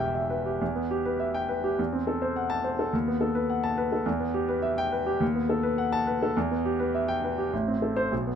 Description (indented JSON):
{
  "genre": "classical, virtuoso piano study",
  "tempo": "104 BPM",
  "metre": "2/4",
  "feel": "rubato",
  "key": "E minor",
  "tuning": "A4 = 438 Hz",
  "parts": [
    { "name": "warm concert grand piano", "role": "solo", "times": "0.0-8.4 s", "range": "E1 to A5", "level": "-25 LUFS", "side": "equal", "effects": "none" }
  ],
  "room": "light reverb",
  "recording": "none",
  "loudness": "-25 LUFS",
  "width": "side -8 dB against mid",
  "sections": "0.6-8.4 A section",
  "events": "none",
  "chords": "0.0 Em; 1.8 F#m7b5/E; 2.9 B7/D#; 4.1 Em; 5.2 B7/D#; 6.4 Em; 7.5 Am",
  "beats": "| 0.60 1.20 | 1.78 2.36 | 2.93 3.50 | 4.07 4.64 | 5.21 5.79 | 6.36 6.93 | 7.52 8.11"
}